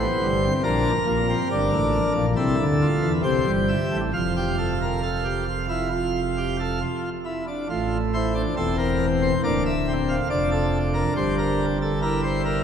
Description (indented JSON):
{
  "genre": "classical, baroque-style 3-part fugue for pipe organ",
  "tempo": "69 BPM",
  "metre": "4/4",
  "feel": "straight",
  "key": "F major",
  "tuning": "A4 = 440 Hz",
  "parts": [
    { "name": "pipe organ, plenum", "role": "solo", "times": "0.0-12.6 s", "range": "D1 to F5", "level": "-21 LUFS", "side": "equal", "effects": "none" }
  ],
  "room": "wet cathedral reverb, RT60 4.9 s",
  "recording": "none",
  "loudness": "-21 LUFS",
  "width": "side -8 dB against mid",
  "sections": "0.0-7.7 A section; 7.7-12.6 B section",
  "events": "none",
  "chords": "0.0 C5; 0.7 Gm/Bb; 2.4 F/C; 3.2 C; 4.1 F; 7.7 F/A; 9.4 Bb/D; 11.2 C7/G"
}